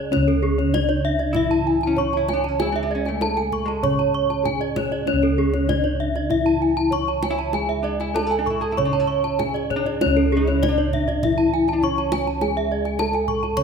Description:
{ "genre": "Balinese gamelan", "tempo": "97 BPM", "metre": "4/4", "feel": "straight", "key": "C# pelog", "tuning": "A4 = 440 Hz", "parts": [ { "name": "gamelan-type bronze metallophone", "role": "melody", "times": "0.0-13.6 s", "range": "C#4 to C#5", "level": "-23 LUFS", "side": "equal", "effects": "none" }, { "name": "gamelan-type bronze metallophone", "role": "accompaniment", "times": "0.0-13.6 s", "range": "C#3 to C#4", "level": "-32 LUFS", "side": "right 2 dB", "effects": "none" }, { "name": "gamelan-type bronze metallophone", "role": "arpeggios", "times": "0.0-13.6 s", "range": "G#4 to C#6", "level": "-28 LUFS", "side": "right 5 dB", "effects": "none" }, { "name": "gamelan-type bossed gongs", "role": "bass", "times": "0.0-13.6 s", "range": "C#2 to G#4", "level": "-26 LUFS", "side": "equal", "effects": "none" }, { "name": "gamelan-type bronze metallophone", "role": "arpeggios", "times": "0.1-13.6 s", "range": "C#5 to C#6", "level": "-26 LUFS", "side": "left 6 dB", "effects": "none" }, { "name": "kendang", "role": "percussion", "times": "0.1-13.6 s", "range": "none", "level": "-31 LUFS", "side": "right 3 dB", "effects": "none" }, { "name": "vintage hollow-body jazz guitar", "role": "second line", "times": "1.3-13.5 s", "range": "G#3 to G#4", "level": "-33 LUFS", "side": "right 1 dB", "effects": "none" } ], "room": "moderate concert hall reverb, RT60 1.9 s", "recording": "minimal, uncompressed stereo recording", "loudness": "-19 LUFS", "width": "side -6 dB against mid", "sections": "0.0-13.6 A section", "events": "none", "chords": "none", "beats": "| 0.12 0.74 1.36 1.97 | 2.59 3.21 3.83 4.45 | 5.07 5.69 6.30 6.92 | 7.54 8.16 8.78 9.40 | 10.02 10.63 11.23 11.83 | 12.42 13.00 13.57" }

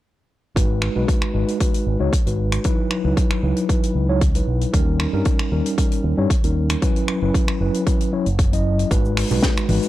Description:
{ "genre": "nu-disco, nu disco", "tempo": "115 BPM", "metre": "4/4", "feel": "straight", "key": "G# minor", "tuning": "A4 = 437 Hz", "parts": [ { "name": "mellow tine electric piano", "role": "accompaniment", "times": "0.6-9.9 s", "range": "F#3 to D#5", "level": "-22 LUFS", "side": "equal", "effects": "medium stereo tremolo, sidechain pumping, analog delay" }, { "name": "fingered electric bass with an envelope filter", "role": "bass", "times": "0.6-9.8 s", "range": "F#1 to G2", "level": "-21 LUFS", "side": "equal", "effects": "sidechain pumping" }, { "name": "electronic kick drum", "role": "drums", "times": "0.6-9.5 s", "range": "none", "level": "-20 LUFS", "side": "equal", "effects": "overdrive" }, { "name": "tight funk drum kit", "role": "drums", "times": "0.6-9.9 s", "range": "finger snaps, hi-hat, snare drum", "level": "-28 LUFS", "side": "left 1 dB", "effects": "none" }, { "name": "cabasa and congas", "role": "percussion", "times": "8.9-9.9 s", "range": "none", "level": "-26 LUFS", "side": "left 2 dB", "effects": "none" } ], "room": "little or no reverb", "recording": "dry, gritty hardware recording, cassette tape", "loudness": "-17 LUFS", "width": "side -15 dB against mid", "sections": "0.6-9.9 A section", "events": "none", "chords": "0.6 G#m7; 2.6 C#m11; 4.7 D#7; 6.8 F#7sus4; 8.9 G#m7", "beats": "| 0.56 1.08 1.60 2.13 | 2.65 3.17 3.69 4.21 | 4.74 5.26 5.78 6.30 | 6.82 7.34 7.87 8.39 | 8.91 9.43" }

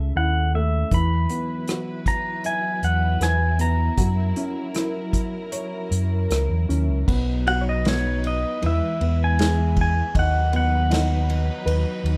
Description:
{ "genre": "acoustic folk-pop ballad", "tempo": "78 BPM", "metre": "4/4", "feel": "straight", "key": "B major", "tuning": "A4 = 440 Hz", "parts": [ { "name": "pedal steel guitar", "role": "melody", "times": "0.0-12.2 s", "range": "C#5 to B5", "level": "-28 LUFS", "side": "equal", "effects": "none" }, { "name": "warm upright piano", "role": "accompaniment", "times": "0.0-12.2 s", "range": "C#3 to E5", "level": "-31 LUFS", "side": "equal", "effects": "none" }, { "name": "fingered electric bass", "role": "bass", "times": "0.0-12.2 s", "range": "B1 to F#2", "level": "-24 LUFS", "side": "equal", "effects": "none" }, { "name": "warm studio string section", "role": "sustained chords", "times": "0.9-12.2 s", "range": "F#3 to B4", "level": "-34 LUFS", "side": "equal", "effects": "none" }, { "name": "unplugged drum kit", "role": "drums", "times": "0.9-12.2 s", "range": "crash cymbal, hi-hat, kick drum, ride cymbal, rim click, snare drum", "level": "-29 LUFS", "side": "equal", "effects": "none" } ], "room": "light reverb", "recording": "dark, warm production", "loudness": "-22 LUFS", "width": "mono", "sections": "0.0-7.1 A section; 7.1-12.2 B section", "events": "none", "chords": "0.0 A/C#; 0.9 Esus2; 4.0 F#7; 7.1 B; 8.6 E; 10.2 B/D#", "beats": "0.16 | 0.92 1.68 2.45 3.21 | 3.98 4.75 5.52 6.30 | 7.08 7.85 8.62 9.39 | 10.16 10.92 11.67" }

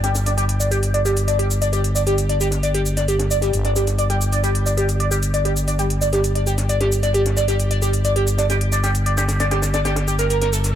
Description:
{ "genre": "driving peak-time techno", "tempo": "133 BPM", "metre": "4/4", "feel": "straight", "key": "unclear", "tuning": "A4 = 442 Hz", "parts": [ { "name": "overdriven synth lead", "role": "riff", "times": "0.0-10.6 s", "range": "G4 to D5", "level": "-21 LUFS", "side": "equal", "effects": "phaser, tube saturation, wide subtle chorus, dub echo" }, { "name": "growling FM bass", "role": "bass", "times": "0.0-10.7 s", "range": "G1", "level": "-20 LUFS", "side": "equal", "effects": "none" }, { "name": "deep reggae drum kit", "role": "drums", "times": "0.0-10.7 s", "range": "hi-hat, snare drum", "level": "-33 LUFS", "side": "left 1 dB", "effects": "high-pass filter on hats, low-pass filter on hats, high-pass filter on snare, low-pass filter on snare, high-pass filter on room, low-pass filter on room" }, { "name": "electronic hi-hat and shaker", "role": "drums", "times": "0.0-10.7 s", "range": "none", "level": "-27 LUFS", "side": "left 1 dB", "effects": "none" } ], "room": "light reverb, digital ambience", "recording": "none", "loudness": "-17 LUFS", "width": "side -10 dB against mid", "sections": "0.0-10.8 A section", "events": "none", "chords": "0.0 G5", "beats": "0.38 0.83 1.28 | 1.73 2.18 2.63 3.08 | 3.54 3.99 4.44 4.89 | 5.34 5.79 6.24 6.69 | 7.14 7.59 8.05 8.50 | 8.95 9.40 9.85 10.30" }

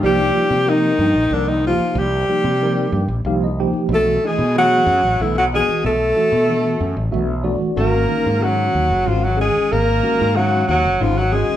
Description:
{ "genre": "jazz", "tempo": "62 BPM (dotted quarters)", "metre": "6/8", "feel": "straight", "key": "unclear", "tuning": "A4 = 437 Hz", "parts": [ { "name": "breathy tenor saxophone", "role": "second line", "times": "0.0-11.6 s", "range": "D3 to Bb3", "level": "-24 LUFS", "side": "right 4 dB", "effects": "none" }, { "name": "mellow tine electric piano", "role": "accompaniment", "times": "0.0-11.6 s", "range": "Eb3 to G5", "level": "-22 LUFS", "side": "right 1 dB", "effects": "medium stereo tremolo" }, { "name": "fretless electric bass", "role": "bass", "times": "0.0-11.5 s", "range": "F#1 to C3", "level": "-21 LUFS", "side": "equal", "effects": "none" }, { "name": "warm alto saxophone", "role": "melody", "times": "0.1-11.6 s", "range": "D4 to Bb4", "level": "-18 LUFS", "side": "left 2 dB", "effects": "none" } ], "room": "moderate large studio reverb, RT60 0.9 s", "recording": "band playing live in one room", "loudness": "-15 LUFS", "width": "side -11 dB against mid", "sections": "0.0-11.6 A section", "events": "tine electric piano fill 2.9-3.9, 6.8-7.8", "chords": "0.0 Cm7; 3.9 Bm7; 7.8 Absus2", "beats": "| 0.03 1.00 | 1.97 2.93 | 3.90 4.87 | 5.84 6.81 | 7.78 8.74 | 9.71 10.68" }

